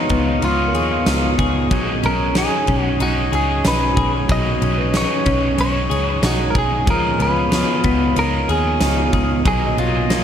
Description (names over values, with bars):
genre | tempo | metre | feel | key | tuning
dream pop | 93 BPM | 4/4 | straight | B lydian | A4 = 440 Hz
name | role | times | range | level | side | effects
clean electric guitar | melody | 0.0-10.2 s | D#4 to D#5 | -23 LUFS | right 1 dB | digital delay
cranked stack guitar | accompaniment | 0.0-10.2 s | B2 to D#5 | -24 LUFS | right 3 dB | overdrive, harmonic tremolo, wide subtle chorus
mellow tonewheel organ | sustained chords | 0.0-10.2 s | C#5 to D#6 | -26 LUFS | equal | slow rotary speaker
clean electric guitar | arpeggios | 0.0-10.2 s | E#3 to G#4 | -22 LUFS | left 5 dB | analog chorus, digital delay
celesta | texture | 0.0-10.2 s | A#4 to E#5 | -35 LUFS | right 3 dB | none
vintage muted picked electric bass | bass | 0.1-10.2 s | B1 to D#2 | -22 LUFS | equal | none
huge arena drum kit | drums | 0.1-10.2 s | kick drum, ride cymbal, snare drum, tambourine | -22 LUFS | equal | none
room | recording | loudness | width
light reverb | none | -15 LUFS | side -9 dB against mid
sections
0.0-10.2 A section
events
none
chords
0.0 C#9; 1.7 B69; 6.9 C#9; 9.5 Bmaj7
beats
0.42 1.07 | 1.71 2.36 3.00 3.65 | 4.29 4.94 5.58 6.23 | 6.87 7.52 8.16 8.81 | 9.45 10.10